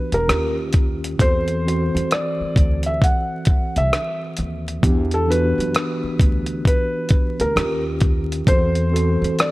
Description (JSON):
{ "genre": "lo-fi hip hop", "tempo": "66 BPM", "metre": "4/4", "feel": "swing 64% on 16ths", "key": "unclear", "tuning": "A4 = 440 Hz", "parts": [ { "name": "felt-muted upright piano", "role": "melody", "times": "0.0-9.5 s", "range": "A4 to F#5", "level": "-24 LUFS", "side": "equal", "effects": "low-pass filter" }, { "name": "mellow tine electric piano", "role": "accompaniment", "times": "0.0-9.5 s", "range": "D#3 to C5", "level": "-25 LUFS", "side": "equal", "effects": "medium stereo tremolo, low-pass filter" }, { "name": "upright bass", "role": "bass", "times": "0.1-9.4 s", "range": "E1 to F#2", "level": "-23 LUFS", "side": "equal", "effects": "none" }, { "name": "dusty soul sampler-style drum kit", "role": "drums", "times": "0.1-9.5 s", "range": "hi-hat, kick drum, rim click", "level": "-19 LUFS", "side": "equal", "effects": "none" } ], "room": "small room ambience", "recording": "vinyl crackle", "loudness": "-17 LUFS", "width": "side -19 dB against mid", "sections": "0.0-9.5 A section", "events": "none", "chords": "0.3 D#9; 1.2 D7; 4.8 Em7; 7.6 D#9; 8.5 D7 (rootless)" }